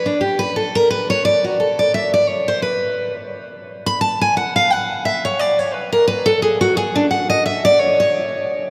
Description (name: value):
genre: bluegrass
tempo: 174 BPM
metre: 4/4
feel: swing 56% on 8ths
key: unclear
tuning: A4 = 440 Hz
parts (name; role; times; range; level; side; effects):
- picked steel-string acoustic guitar; solo; 0.0-8.7 s; D4 to B5; -18 LUFS; equal; none
room: wet cathedral reverb, RT60 6.0 s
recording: in a vast, echoing space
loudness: -17 LUFS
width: mono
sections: 0.0-8.7 A section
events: steel-string acoustic guitar solo 0.0-8.7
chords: none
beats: 0.22 | 0.56 0.91 1.25 1.60 | 1.95 2.29 2.64 2.98 | 3.33 3.67 4.02 4.36 | 4.71 5.05 5.39 5.74 | 6.08 6.43 6.77 7.12 | 7.46 7.81 8.15 8.49